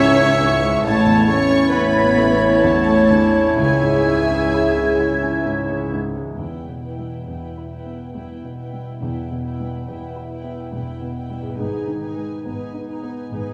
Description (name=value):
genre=cinematic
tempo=62-71 BPM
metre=3/4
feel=rubato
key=unclear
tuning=A4 = 439 Hz
part: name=rich studio violin section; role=melody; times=0.0-13.5 s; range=G5 to C#6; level=-31 LUFS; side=equal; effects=none
part: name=clear clarinet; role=second line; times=0.0-6.0 s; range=E4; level=-26 LUFS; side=equal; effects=none
part: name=dark studio violin section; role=second line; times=0.0-13.5 s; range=G#4 to C#5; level=-32 LUFS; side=equal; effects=none
part: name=mellow hollow concert flute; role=second line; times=0.0-6.0 s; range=G#6 to A6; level=-30 LUFS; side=equal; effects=none
part: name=warm oboe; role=second line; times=0.0-6.0 s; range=C#5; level=-28 LUFS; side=equal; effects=none
part: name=rich studio viola section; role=accompaniment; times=0.0-13.5 s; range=D4 to E5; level=-30 LUFS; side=equal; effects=none
part: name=warm concert grand piano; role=accompaniment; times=0.0-13.5 s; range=A1 to E4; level=-27 LUFS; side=equal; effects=none
part: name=mellow French horn section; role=sustained chords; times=0.0-6.0 s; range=E3 to C#5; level=-24 LUFS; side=equal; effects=none
part: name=concert harp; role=arpeggios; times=0.0-13.5 s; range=G#2 to G#5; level=-30 LUFS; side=equal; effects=none
part: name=dark studio cello section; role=bass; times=0.0-13.5 s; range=E2 to C#4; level=-24 LUFS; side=equal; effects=none
part: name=dark studio double bass section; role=bass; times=0.0-13.5 s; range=E1 to C#2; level=-31 LUFS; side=equal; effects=none
room=moderate scoring stage reverb, RT60 1.9 s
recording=studio reverb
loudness=-18 LUFS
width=mono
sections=0.0-6.4 A section; 6.4-13.5 B section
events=none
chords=0.0 C#m; 0.9 Aadd9; 3.6 C#m; 6.4 Em; 11.6 G#m